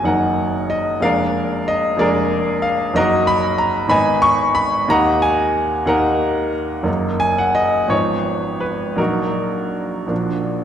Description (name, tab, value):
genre	classical, romantic character piece for solo piano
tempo	52-63 BPM (dotted quarters)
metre	6/8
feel	rubato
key	Eb minor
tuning	A4 = 440 Hz
part	clear baby grand piano	solo	0.0-10.6 s	F1 to Db6	-16 LUFS	equal	none
room	wet concert hall reverb, RT60 2.2 s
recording	recorded in a church or concert hall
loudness	-16 LUFS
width	side -9 dB against mid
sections	0.0-10.6 A section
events	none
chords	0.0 Ebm/Gb; 1.0 Bb7/F; 3.0 Ebm/Gb; 3.9 Abm; 4.9 Ebm; 6.9 Ebm/Gb; 7.9 Fm7b5/Ab; 9.0 Ebm/Bb; 10.1 Bb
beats	0.06 | 1.03 2.00 | 2.96 3.92 | 4.90 5.89 | 6.87 7.92 | 8.98 10.10